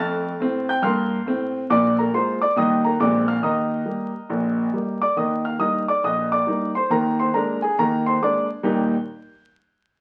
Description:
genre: jazz, stride piano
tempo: 138 BPM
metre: 4/4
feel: swing 64% on 8ths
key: Eb major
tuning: A4 = 440 Hz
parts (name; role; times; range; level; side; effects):
- warm concert grand piano; solo; 0.0-8.9 s; Bb1 to A6; -22 LUFS; equal; none
room: wet studio reverb, RT60 0.7 s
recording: very old 78 rpm record, vinyl crackle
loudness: -22 LUFS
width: mono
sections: 0.0-5.2 A section; 5.2-8.6 B section; 8.6-10.0 C section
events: none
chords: 0.0 F; 1.7 Bb7; 2.6 Eb; 3.0 Bb13; 3.4 Eb; 6.9 Bb7/Eb; 8.6 Eb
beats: 0.39 0.83 1.26 | 1.70 2.13 2.56 3.00 | 3.43 3.87 4.30 4.73 | 5.17 5.60 6.04 6.47 | 6.91 7.34 7.78 8.21 | 8.64

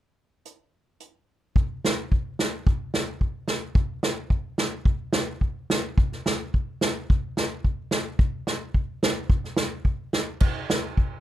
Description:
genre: alpine folk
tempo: 109 BPM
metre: 2/4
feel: rubato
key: none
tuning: none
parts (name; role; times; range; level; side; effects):
- unplugged drum kit; drums; 0.5-11.1 s; crash cymbal, hi-hat, kick drum, snare drum; -23 LUFS; equal; none
room: light reverb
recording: none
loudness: -23 LUFS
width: side -13 dB against mid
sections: 0.4-1.6 A section; 1.6-10.4 B section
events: none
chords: none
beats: | 0.44 0.99 | 1.55 2.11 | 2.66 3.20 | 3.75 4.30 | 4.85 5.41 | 5.98 6.54 | 7.10 7.64 | 8.19 8.73 | 9.28 9.84 | 10.40 10.97

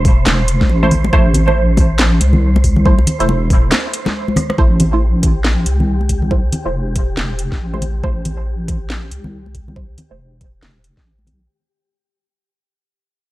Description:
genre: deep dubstep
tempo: 139 BPM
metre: 4/4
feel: swing 60% on 16ths, half-time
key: A minor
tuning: A4 = 442 Hz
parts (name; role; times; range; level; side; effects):
- deep soft wobble bass; bass; 0.0-11.5 s; E1 to C2; -16 LUFS; equal; chorus
- electronic kick drum; drums; 0.0-11.0 s; none; -14 LUFS; equal; studio reverb
- wind-like tuned noise texture; texture; 0.0-11.5 s; G4 to C5; -27 LUFS; right 4 dB; built-in reverb
- garage drum kit; drums; 0.1-11.4 s; handclaps, hi-hat, rim click, snare drum; -19 LUFS; equal; studio reverb
- congas; percussion; 0.3-11.4 s; none; -20 LUFS; left 1 dB; none
- filtered dub chord stab; stabs; 0.8-10.3 s; A3 to C5; -22 LUFS; right 2 dB; phaser, analog chorus, dub echo
room: little or no reverb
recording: dry, gritty hardware recording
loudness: -12 LUFS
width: side -17 dB against mid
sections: 0.0-4.6 A section; 4.6-11.5 B section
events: drop 0.0-4.6; break 3.7-4.6; drum fill 4.4; fade-out 4.6-11.5; filter sweep on synth stab 4.6-11.5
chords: 0.0 Am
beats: 0.27 0.70 | 1.13 1.56 1.99 2.42 | 2.86 3.29 3.72 4.15 | 4.58 5.01 5.45 5.88 | 6.31 6.74 7.17 7.60 | 8.04 8.47 8.90 9.33 | 9.76 10.19 10.63 11.06

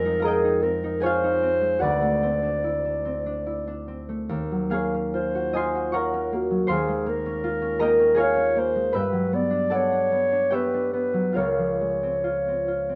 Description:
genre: classical, impressionist duo for clarinet and harp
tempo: 68-81 BPM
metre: 3/4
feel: rubato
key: unclear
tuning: A4 = 441 Hz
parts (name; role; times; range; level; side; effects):
- dark clarinet; melody; 0.0-13.0 s; Gb4 to D5; -26 LUFS; equal; none
- concert harp; accompaniment; 0.0-13.0 s; Db2 to Eb6; -27 LUFS; equal; none
room: light reverb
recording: dark, warm production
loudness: -24 LUFS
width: mono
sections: 0.0-13.0 A section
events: none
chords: 0.0 Fm7; 1.8 D9; 4.3 Ebm11; 6.7 Bbm7/Eb; 9.0 Gmaj7; 11.4 Dbmaj7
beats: 0.23 1.01 | 1.82 2.64 3.46 | 4.30 5.15 5.96 | 6.71 7.46 8.22 | 8.96 9.73 10.53 | 11.36 12.24

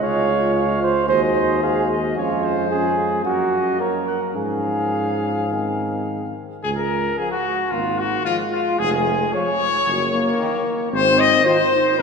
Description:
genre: classical, brass quintet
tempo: 111 BPM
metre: 4/4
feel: rubato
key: Db major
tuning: A4 = 443 Hz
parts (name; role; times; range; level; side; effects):
- clear trumpet; melody; 0.0-12.0 s; F4 to Gb5; -23 LUFS; left 7 dB; none
- mellow flugelhorn; second line; 0.0-12.0 s; F4 to Eb5; -22 LUFS; right 3 dB; none
- bright trombone; accompaniment; 0.0-11.6 s; Eb3 to Bb3; -30 LUFS; right 1 dB; none
- warm French horn; accompaniment; 0.0-12.0 s; Gb3 to Gb4; -27 LUFS; left 3 dB; none
- mellow tuba; bass; 0.0-12.0 s; F1 to Ab2; -26 LUFS; right 1 dB; none
room: wet church reverb, RT60 3.6 s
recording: recorded in a church or concert hall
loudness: -18 LUFS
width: side -5 dB against mid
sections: 0.0-6.6 A section; 6.6-12.0 B section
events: none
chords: 0.0 Db; 1.1 Ab5/Eb; 2.2 Db/F; 3.2 Gb; 4.4 Db/Ab; 5.5 Ab; 6.6 Db; 8.8 Db/F; 9.9 Ebm7/Gb; 10.9 Ab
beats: | 0.02 0.55 1.09 1.63 | 2.17 2.71 3.25 3.79 | 4.36 4.94 5.51 6.08 | 6.65 7.19 7.73 8.26 | 8.79 9.33 9.87 10.39 | 10.92 11.46 11.99

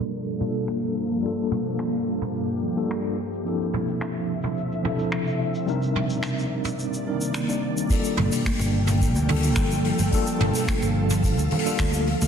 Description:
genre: sunset chillout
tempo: 108 BPM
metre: 4/4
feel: straight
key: G minor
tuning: A4 = 441 Hz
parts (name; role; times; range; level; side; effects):
- mellow tine electric piano; accompaniment; 0.0-12.1 s; F3 to D5; -27 LUFS; moving between left 4 dB and right 4 dB; medium stereo tremolo, auto-pan, vintage 12-bit sampler grit, digital delay
- ethereal airy pad; sustained chords; 0.0-12.3 s; D2 to G5; -27 LUFS; equal; ensemble chorus, built-in reverb
- jazz brush drum kit; drums; 0.0-12.3 s; finger snaps, hi-hat, shaker, toms; -30 LUFS; equal; low-pass filter on hats, low-pass filter on toms, soft clipping on snare, low-pass filter on snare, low-pass filter on perc, low-pass filter on room
- electronic kick drum; drums; 7.9-11.9 s; none; -25 LUFS; equal; overdrive
- fingered electric bass; bass; 8.2-12.3 s; G1 to D2; -24 LUFS; equal; none
- congas; percussion; 8.3-12.3 s; none; -31 LUFS; right 2 dB; none
room: moderate digital room reverb, RT60 1.2 s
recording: dense, heavily limited modern master, low-pass filter, lossy compression artefacts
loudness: -22 LUFS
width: side -7 dB against mid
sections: 0.0-7.9 A section; 7.9-12.3 B section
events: filter sweep on drum 0.0-7.9; filter sweep on ambient pad 0.0-7.9; filter sweep 0.0-7.9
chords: 0.0 Gm9; 3.2 Dm9; 5.7 Cm9; 7.9 Gm9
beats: 0.12 0.68 | 1.24 1.79 2.35 2.90 | 3.46 4.01 4.57 5.12 | 5.68 6.24 6.79 7.35 | 7.90 8.46 9.01 9.57 | 10.12 10.68 11.23 11.79

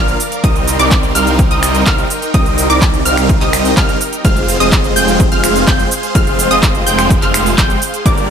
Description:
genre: EDM, festival progressive house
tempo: 126 BPM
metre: 4/4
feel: straight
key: unclear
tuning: A4 = 440 Hz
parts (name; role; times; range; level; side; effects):
- supersaw pad; sustained chords; 0.0-8.3 s; Eb4 to D6; -22 LUFS; right 1 dB; sidechain pumping
- wide unison pluck; arpeggios; 0.0-8.3 s; D6 to G6; -19 LUFS; equal; sidechain pumping, digital delay
- big supersaw lead; riff; 0.0-8.3 s; F3 to G5; -16 LUFS; right 1 dB; phaser, sidechain pumping, digital delay
- wide detuned saw bass; bass; 0.0-8.3 s; F1 to C2; -19 LUFS; equal; chorus, sidechain pumping
- big-room dance drum kit; drums; 0.1-8.3 s; cabasa, finger snaps, handclaps, hi-hat; -19 LUFS; right 2 dB; overdrive
- electronic kick drum; drums; 0.4-8.2 s; none; -13 LUFS; equal; overdrive
room: little or no reverb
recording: none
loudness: -10 LUFS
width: side -7 dB against mid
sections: 0.0-8.3 A section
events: none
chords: 0.4 Cm7; 4.2 Fm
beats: | 0.44 0.91 1.39 1.87 | 2.34 2.82 3.29 3.77 | 4.25 4.72 5.20 5.68 | 6.15 6.63 7.10 7.58 | 8.06

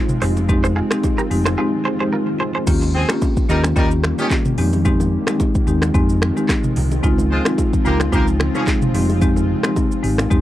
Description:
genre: afrobeats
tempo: 110 BPM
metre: 4/4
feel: swing 55% on 16ths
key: F minor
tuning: A4 = 441 Hz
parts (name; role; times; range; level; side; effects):
- marimba with medium mallets; accompaniment; 0.0-10.4 s; Ab3 to G4; -20 LUFS; left 1 dB; none
- granular cloud pad; sustained chords; 0.0-10.4 s; Db3 to G4; -26 LUFS; equal; built-in reverb
- afro-pop drum kit; drums; 0.1-10.4 s; crash cymbal, finger snaps, handclaps, hi-hat, kick drum, rim click, shaker, toms; -19 LUFS; equal; none
- direct-recorded clean electric guitar; riff; 0.2-2.6 s; F4 to C5; -24 LUFS; right 3 dB; lush chorus, tape echo
- hollow-body short-scale fingered electric bass; bass; 0.2-10.4 s; F1 to F2; -19 LUFS; equal; none
- congas and bongos; percussion; 0.2-10.4 s; none; -29 LUFS; right 2 dB; none
- warm horn section; second line; 2.9-8.6 s; Eb3 to C5; -22 LUFS; equal; none
room: little or no reverb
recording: dry, gritty hardware recording, cassette tape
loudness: -15 LUFS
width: side -14 dB against mid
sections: 0.0-2.7 A section; 2.7-10.4 A section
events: break 1.6-2.7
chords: 0.2 Fm7; 2.7 Eb7; 4.6 Fm7; 7.0 Dbmaj7; 8.9 Fm7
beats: | 0.49 1.04 1.58 2.13 | 2.67 3.22 3.76 4.31 | 4.86 5.40 5.95 6.49 | 7.04 7.58 8.13 8.67 | 9.22 9.76 10.31

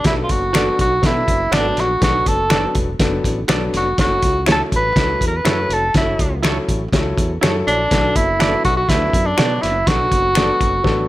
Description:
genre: uptempo 1960s-style soul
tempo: 122 BPM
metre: 4/4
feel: straight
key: unclear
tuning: A4 = 440 Hz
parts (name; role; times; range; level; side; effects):
- warm tenor saxophone; melody; 0.0-11.1 s; D4 to B4; -18 LUFS; right 1 dB; none
- warm upright piano; accompaniment; 0.0-11.1 s; F#3 to A4; -23 LUFS; left 3 dB; none
- cloth-damped thuddy drum kit; drums; 0.0-11.0 s; hi-hat, kick drum, snare drum; -19 LUFS; equal; none
- fingered electric bass; bass; 0.1-11.0 s; E1 to B2; -24 LUFS; equal; none
- semi-hollow electric guitar; stabs; 0.5-10.5 s; E4 to D5; -25 LUFS; right 5 dB; none
- finger snap; percussion; 0.5-10.5 s; none; -24 LUFS; left 6 dB; none
room: light reverb, small room reverb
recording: none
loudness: -14 LUFS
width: side -16 dB against mid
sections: 0.0-11.1 A section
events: drum fill 10.9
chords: 0.0 Bm7; 4.0 F#m7; 7.9 Bm7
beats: | 0.05 0.54 1.03 1.52 | 2.01 2.50 3.00 3.49 | 3.98 4.47 4.96 5.45 | 5.95 6.44 6.93 7.42 | 7.91 8.40 8.89 9.38 | 9.87 10.36 10.85

